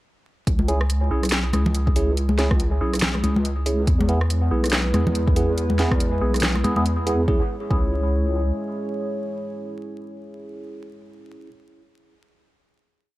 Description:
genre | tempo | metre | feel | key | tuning
deep dubstep | 141 BPM | 4/4 | swing 58% on 16ths, half-time | C# minor | A4 = 440 Hz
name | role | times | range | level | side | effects
deep soft wobble bass | bass | 0.5-8.5 s | B1 to E2 | -22 LUFS | equal | chorus
electronic kick drum | drums | 0.5-7.8 s | none | -21 LUFS | equal | overdrive
garage drum kit | drums | 0.5-7.2 s | hi-hat, rim click, snare drum | -25 LUFS | equal | overdrive
congas | percussion | 0.6-6.8 s | none | -26 LUFS | left 1 dB | dub echo
tine electric piano | stabs | 0.7-11.5 s | B3 to G#4 | -27 LUFS | right 2 dB | phaser, dub echo
dark analog pad | sustained chords | 3.9-11.1 s | G#3 to C#5 | -30 LUFS | left 1 dB | wide subtle chorus
room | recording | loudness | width
light reverb | vinyl crackle | -19 LUFS | side -17 dB against mid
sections
0.5-7.3 drop; 7.3-10.7 final chord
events
drop 0.5-7.3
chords
0.5 C#m; 3.9 E; 7.3 C#m

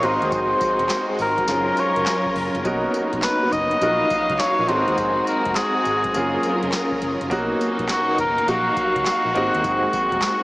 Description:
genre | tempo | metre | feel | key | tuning
R&B, new jack swing | 103 BPM | 4/4 | swing 65% on 16ths | unclear | A4 = 440 Hz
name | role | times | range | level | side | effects
warm cor anglais | melody | 0.0-10.4 s | Gb4 to D#5 | -21 LUFS | equal | diffuse ambient delay
clear baby grand piano | accompaniment | 0.0-10.4 s | Bb3 to F5 | -26 LUFS | equal | none
warm studio string section | sustained chords | 0.0-10.4 s | B2 to F5 | -26 LUFS | equal | none
mellow synth brass | stabs | 0.0-10.4 s | B3 to C5 | -31 LUFS | equal | none
vintage muted fingered electric bass | bass | 0.0-10.2 s | F1 to Eb2 | -35 LUFS | equal | none
booming analog drum machine | drums | 0.0-10.4 s | handclaps, hi-hat, kick drum, snare drum, tambourine | -31 LUFS | equal | none
group handclap | percussion | 0.9-10.4 s | none | barely audible | none | none
room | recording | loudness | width
wet huge ambient reverb, RT60 8.1 s | dreamy mix soaked in reverb, small speaker sound | -18 LUFS | side -20 dB against mid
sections
0.0-10.4 A section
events
none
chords
0.0 Ab7; 1.5 Gbmaj7; 2.6 Bmaj7; 3.8 Ebmadd9/Bb; 4.7 Ab7; 6.1 Gbmaj7; 7.3 Bmaj7; 8.5 Ebmadd9/Bb; 9.3 Ab7

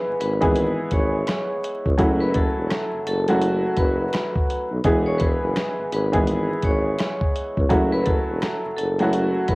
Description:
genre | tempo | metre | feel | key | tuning
hip hop, boom-bap hip-hop | 84 BPM | 4/4 | swing 63% on 16ths | F# minor | A4 = 440 Hz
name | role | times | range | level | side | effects
vibraphone with hard mallets | melody | 0.0-9.6 s | A4 to C#6 | -27 LUFS | equal | high-pass filter, low-pass filter, cassette tape
warm upright piano | accompaniment | 0.0-9.6 s | E3 to G#4 | -24 LUFS | equal | high-pass filter, low-pass filter, cassette tape
warm tuba | bass | 0.1-9.6 s | E1 to C#2 | -25 LUFS | equal | tube saturation
dusty soul sampler-style drum kit | drums | 0.2-9.6 s | hi-hat, kick drum, rim click, snare drum | -24 LUFS | equal | cassette tape
room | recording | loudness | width
light reverb | home recording on cassette, vinyl crackle | -19 LUFS | side -24 dB against mid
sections
0.0-9.6 A section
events
none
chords
0.0 E; 2.0 F#m7; 4.8 E; 7.7 F#m7

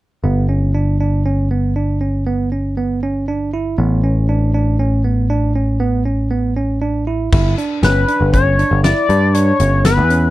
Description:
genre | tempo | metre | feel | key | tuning
progressive instrumental, band music in an uneven meter | 119 BPM | 7/4 | straight | unclear | A4 = 437 Hz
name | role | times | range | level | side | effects
bell-like tine electric piano | arpeggios | 0.2-10.3 s | B3 to E4 | -20 LUFS | right 4 dB | none
picked electric bass | bass | 0.2-10.3 s | G1 to G2 | -16 LUFS | equal | none
huge arena drum kit | drums | 7.3-10.2 s | crash cymbal, hi-hat, kick drum, snare drum | -19 LUFS | left 1 dB | none
lead with added fifth | melody | 7.8-10.3 s | B4 to D5 | -16 LUFS | left 3 dB | chorus
room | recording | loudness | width
little or no reverb | dry, close 1970s-style studio recording | -14 LUFS | side -16 dB against mid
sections
0.2-7.3 A section; 7.3-10.3 B section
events
none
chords
0.2 G; 3.8 Aadd9; 7.3 G

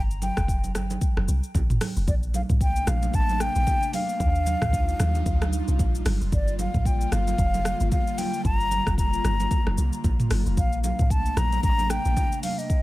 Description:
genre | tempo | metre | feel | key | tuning
amapiano | 113 BPM | 4/4 | swing 58% on 16ths | G minor | A4 = 440 Hz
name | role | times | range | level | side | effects
deep log drum bass | bass | 0.0-12.1 s | F1 to Eb2 | -25 LUFS | equal | none
afro-pop drum kit | drums | 0.1-12.8 s | hi-hat, kick drum, rim click, shaker, toms | -25 LUFS | equal | none
mellow hollow silver concert flute | melody | 0.2-12.8 s | D5 to Bb5 | -29 LUFS | left 1 dB | tape echo
congas | percussion | 0.2-12.6 s | none | -34 LUFS | right 5 dB | none
airy breathy pad | sustained chords | 2.3-12.8 s | C3 to F4 | -33 LUFS | equal | chorus, sidechain pumping
room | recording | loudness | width
digital ambience | none | -21 LUFS | side -17 dB against mid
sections
0.0-12.8 A section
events
none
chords
0.0 G7(no3); 2.1 Bbmaj9; 4.2 Ebmaj9; 6.1 Gm7; 10.6 Bbmaj9

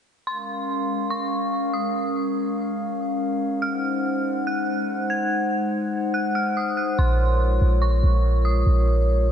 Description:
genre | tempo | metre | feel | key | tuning
hip hop | 143 BPM | 4/4 | half-time | Bb minor | A4 = 439 Hz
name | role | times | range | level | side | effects
dark detuned synth bell | melody | 0.3-8.7 s | C6 to Ab6 | -29 LUFS | right 1 dB | chorus, low-pass filter, diffuse ambient delay
glass harmonica | sustained chords | 0.3-9.3 s | Ab3 to Gb5 | -24 LUFS | left 1 dB | none
clean 808-style bass | bass | 7.0-9.3 s | Bb1 | -18 LUFS | equal | none
room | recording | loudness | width
wet lush hall reverb, RT60 2.9 s | dreamy mix soaked in reverb, nothing above 10.5 kHz | -21 LUFS | side -9 dB against mid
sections
0.3-7.0 A section; 7.0-9.3 B section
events
none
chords
0.3 Bbm7; 3.6 Ab7; 7.0 Bbm7

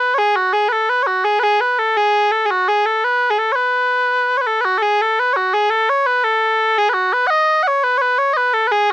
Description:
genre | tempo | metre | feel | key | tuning
celtic folk | 113 BPM (dotted quarters) | 6/8 | straight | B mixolydian | A4 = 441 Hz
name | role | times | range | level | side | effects
mellow small bagpipes | solo | 0.0-8.9 s | F#4 to F#5 | -13 LUFS | equal | none
room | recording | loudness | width
light reverb | dry, close 1970s-style studio recording | -13 LUFS | side -15 dB against mid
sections
0.0-4.6 A section; 4.6-8.9 A section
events
none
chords
none

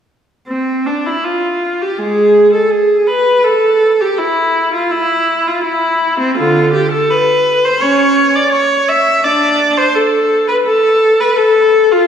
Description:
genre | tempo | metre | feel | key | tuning
classical, baroque-style suite movement for unaccompanied viola | 83 BPM | 4/4 | rubato | unclear | A4 = 439 Hz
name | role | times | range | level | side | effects
rich viola | solo | 0.5-12.1 s | D3 to E5 | -10 LUFS | equal | none
room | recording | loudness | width
wet concert hall reverb, RT60 2.1 s | recorded in a church or concert hall | -10 LUFS | side -8 dB against mid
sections
0.5-12.1 A section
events
none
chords
none

